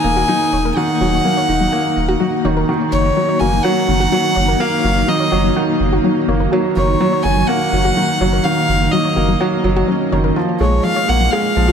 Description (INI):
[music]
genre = piano and strings electronica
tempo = 125 BPM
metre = 4/4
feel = straight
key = F# major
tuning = A4 = 441 Hz
[part]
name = warm violin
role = melody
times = 0.0-11.7 s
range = C#5 to G#5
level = -19 LUFS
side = left 1 dB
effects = none
[part]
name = granular cloud pad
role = sustained chords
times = 0.0-11.7 s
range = A#3 to D#5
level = -22 LUFS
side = left 2 dB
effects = built-in reverb
[part]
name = felt-muted upright piano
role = riff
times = 0.0-11.7 s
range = D#3 to F#4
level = -18 LUFS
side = right 2 dB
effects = digital delay
[part]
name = warm sub bass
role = bass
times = 0.0-11.7 s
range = D#1 to A#1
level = -19 LUFS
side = equal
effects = none
[part]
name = soft round pluck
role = arpeggios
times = 0.2-11.7 s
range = E#3 to F#5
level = -24 LUFS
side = left 4 dB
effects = chorus, digital delay
[sound]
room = moderate huge ambient reverb, RT60 5.0 s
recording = none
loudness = -13 LUFS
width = side -7 dB against mid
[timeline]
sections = 0.0-2.7 A section; 2.7-11.7 A section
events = drop 0.0-2.7, 2.7-11.7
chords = 0.0 D#m; 2.7 F#6; 10.4 A#m7